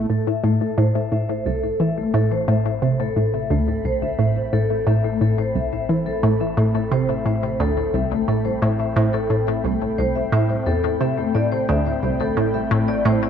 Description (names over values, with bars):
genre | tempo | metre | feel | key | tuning
ambient, sequencer-driven space music | 88 BPM | 4/4 | straight | A minor | A4 = 440 Hz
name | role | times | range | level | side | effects
sweeping resonant pad | sustained chords | 0.0-13.3 s | A2 to B5 | -31 LUFS | equal | chorus
warm sub bass | bass | 0.0-13.3 s | A1 | -40 LUFS | right 1 dB | tube saturation
vibraphone with medium mallets | arpeggios | 0.1-13.3 s | A3 to E5 | -24 LUFS | moving between left 6 dB and right 1 dB | auto-pan, low-pass filter, ping-pong delay
resonant blip pluck | riff | 0.1-13.2 s | C2 to E3 | -20 LUFS | equal | chorus, ping-pong delay
room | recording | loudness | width
moderate spring reverb, RT60 2.8 s | echo-heavy mix | -18 LUFS | side -8 dB against mid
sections
0.1-13.3 A section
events
fade-in on analog synth pad 0.1-13.3; fade-in on sub bass 0.1-13.3; filter sweep on vibraphone 0.1-13.3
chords
0.1 Am7